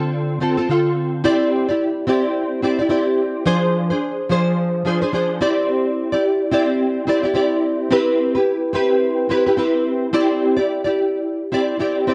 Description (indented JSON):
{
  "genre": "indie pop",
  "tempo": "108 BPM",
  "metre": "4/4",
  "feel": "swing 60% on 16ths",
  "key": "C major",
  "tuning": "A4 = 439 Hz",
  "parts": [
    { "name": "nylon-string guitar", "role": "solo", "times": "0.0-12.1 s", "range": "D3 to D5", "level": "-19 LUFS", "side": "equal", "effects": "ensemble chorus, warbly pitch drift" }
  ],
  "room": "moderate echo chamber reverb, RT60 1.8 s",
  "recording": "nothing above 10.8 kHz",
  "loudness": "-19 LUFS",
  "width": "mono",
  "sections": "0.0-10.1 A section; 10.1-12.1 B section",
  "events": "none",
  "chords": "0.0 Dm7; 1.2 Cadd9; 3.5 Fm6; 5.4 Cadd9; 7.9 Cmaj7; 10.1 Cadd9"
}